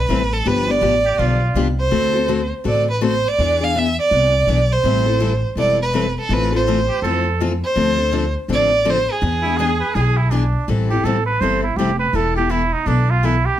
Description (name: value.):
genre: acoustic string swing (jazz manouche).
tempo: 164 BPM.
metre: 4/4.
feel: swing 61% on 8ths.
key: A minor.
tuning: A4 = 440 Hz.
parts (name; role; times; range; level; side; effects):
rich violin; melody; 0.0-10.3 s; G#4 to F5; -19 LUFS; right 2 dB; none.
upright bass; bass; 0.0-13.4 s; E1 to F2; -20 LUFS; equal; none.
picked steel-string acoustic guitar; accompaniment; 0.1-13.3 s; D3 to A4; -22 LUFS; left 6 dB; none.
trumpet with straight mute; second line; 1.1-1.7, 6.9-13.6 s; D4 to C5; -21 LUFS; right 5 dB; none.
room: moderate club reverb, RT60 0.7 s.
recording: none.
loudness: -15 LUFS.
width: side -11 dB against mid.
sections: 0.0-10.7 A section; 10.7-13.6 B section.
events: muted trumpet solo 10.7-13.6.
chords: 0.5 G7; 1.9 D7; 3.4 E7; 4.8 Am7; 6.3 Fmaj7/A; 7.8 Dm7; 9.2 E7; 10.7 Am7; 12.1 Esus4.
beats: 0.10 | 0.46 0.83 1.19 1.56 | 1.92 2.29 2.65 3.02 | 3.38 3.75 4.12 4.48 | 4.84 5.21 5.58 5.94 | 6.30 6.67 7.03 7.40 | 7.76 8.13 8.49 8.86 | 9.22 9.59 9.95 10.32 | 10.68 11.05 11.41 11.78 | 12.14 12.51 12.87 13.24.